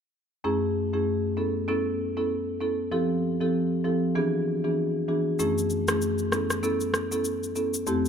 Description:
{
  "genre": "afrobeats",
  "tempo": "97 BPM",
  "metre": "4/4",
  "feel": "swing 58% on 16ths",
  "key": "A major",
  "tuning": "A4 = 437 Hz",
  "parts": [
    { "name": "marimba with medium mallets", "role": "accompaniment", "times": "0.4-8.1 s", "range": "F2 to A4", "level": "-24 LUFS", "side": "equal", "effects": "none" },
    { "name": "electronic shaker and rim click", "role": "drums", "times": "5.4-8.1 s", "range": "none", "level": "-30 LUFS", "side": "equal", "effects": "none" }
  ],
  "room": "moderate echo chamber reverb, RT60 2.6 s",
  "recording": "dark, warm production",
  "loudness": "-24 LUFS",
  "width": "side -7 dB against mid",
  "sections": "0.4-8.1 A section",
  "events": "none",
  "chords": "0.4 F#m7; 1.4 Aadd9; 2.9 Fmaj7; 4.2 E7; 5.4 F#m7; 6.3 Aadd9"
}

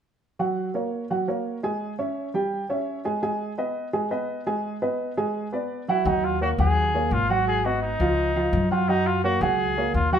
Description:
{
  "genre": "Afro-Cuban jazz",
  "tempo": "170 BPM",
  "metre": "4/4",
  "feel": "straight",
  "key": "unclear",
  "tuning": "A4 = 444 Hz",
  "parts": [
    { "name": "warm upright piano", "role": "accompaniment", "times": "0.4-10.2 s", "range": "F3 to Ab5", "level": "-25 LUFS", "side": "right 2 dB", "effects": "none" },
    { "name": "mellow trumpet", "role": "melody", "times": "5.9-10.2 s", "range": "Eb4 to Ab4", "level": "-25 LUFS", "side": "left 2 dB", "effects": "none" },
    { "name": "upright bass", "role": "bass", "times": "6.1-10.2 s", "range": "Ab1 to Gb2", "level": "-25 LUFS", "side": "left 2 dB", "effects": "none" }
  ],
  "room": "moderate large studio reverb, RT60 1.1 s",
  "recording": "band playing live in one room",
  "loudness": "-22 LUFS",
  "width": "side -8 dB against mid",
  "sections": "0.4-6.1 A section; 6.1-10.2 B section",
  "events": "none",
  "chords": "0.4 Gb; 1.8 Dbm; 3.2 Abm; 5.3 E9; 6.1 Ebm7; 7.5 Abm7; 8.2 Dbadd9; 8.9 Gbadd9"
}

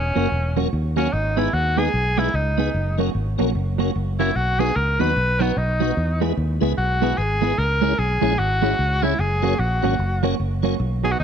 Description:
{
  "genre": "ska",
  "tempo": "149 BPM",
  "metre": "4/4",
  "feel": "swing 61% on 8ths",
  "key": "unclear",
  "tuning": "A4 = 440 Hz",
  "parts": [
    { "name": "bright tenor saxophone", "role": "melody", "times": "0.0-11.2 s", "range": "B3 to B4", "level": "-23 LUFS", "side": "left 1 dB", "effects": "none" },
    { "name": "fingered electric bass", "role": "bass", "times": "0.0-11.2 s", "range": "E1 to E2", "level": "-22 LUFS", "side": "equal", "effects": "none" },
    { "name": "clean electric guitar", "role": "accompaniment", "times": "0.2-11.2 s", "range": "F#3 to G#4", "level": "-25 LUFS", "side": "right 13 dB", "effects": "spring reverb" },
    { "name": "tonewheel organ", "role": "stabs", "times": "0.2-10.7 s", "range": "A#3 to C#5", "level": "-28 LUFS", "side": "left 14 dB", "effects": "chorus vibrato, slow rotary speaker" }
  ],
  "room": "light reverb, small room reverb",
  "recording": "1960s-style stereo with parts hard left and right",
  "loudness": "-18 LUFS",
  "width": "side -8 dB against mid",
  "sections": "0.0-10.8 A section",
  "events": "tenor saxophone solo 0.0-10.8",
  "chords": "0.0 F#; 1.1 G#m; 2.7 F#; 4.4 B; 6.0 E; 7.6 C#m; 9.2 F#"
}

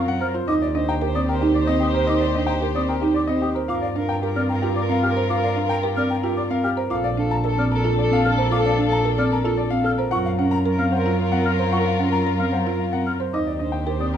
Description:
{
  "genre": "classical, minimalist pattern music",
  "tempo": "112 BPM",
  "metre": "3/4",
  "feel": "straight",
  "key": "Eb lydian",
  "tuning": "A4 = 440 Hz",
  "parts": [
    { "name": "clear grand piano", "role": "melody", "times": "0.0-14.2 s", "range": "G4 to Bb5", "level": "-27 LUFS", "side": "left 6 dB", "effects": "none" },
    { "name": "clear soprano saxophone", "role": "second line", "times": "0.0-14.1 s", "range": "A4 to C5", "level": "-29 LUFS", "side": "right 1 dB", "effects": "none" },
    { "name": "warm studio string section", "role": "sustained chords", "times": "0.0-14.2 s", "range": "D4 to C5", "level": "-29 LUFS", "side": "left 6 dB", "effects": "none" },
    { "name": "folk marimba with soft mallets", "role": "arpeggios", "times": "0.0-14.2 s", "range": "C4 to C5", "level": "-23 LUFS", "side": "right 2 dB", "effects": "none" },
    { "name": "rich double bass", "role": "bass", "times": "0.0-14.2 s", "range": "Bb1 to G2", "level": "-25 LUFS", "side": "right 2 dB", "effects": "none" },
    { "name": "mellow hollow concert flute", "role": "arpeggios", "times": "0.2-14.2 s", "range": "Eb5 to F6", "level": "-30 LUFS", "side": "left 2 dB", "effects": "none" }
  ],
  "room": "moderate large studio reverb, RT60 1.2 s",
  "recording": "dark, warm production",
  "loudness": "-19 LUFS",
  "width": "side -9 dB against mid",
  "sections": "0.5-14.2 A section",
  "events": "none",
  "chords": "0.5 Eb6; 3.7 Gm7; 6.9 Bbmaj7; 10.1 Gbmaj7; 13.3 Eb6"
}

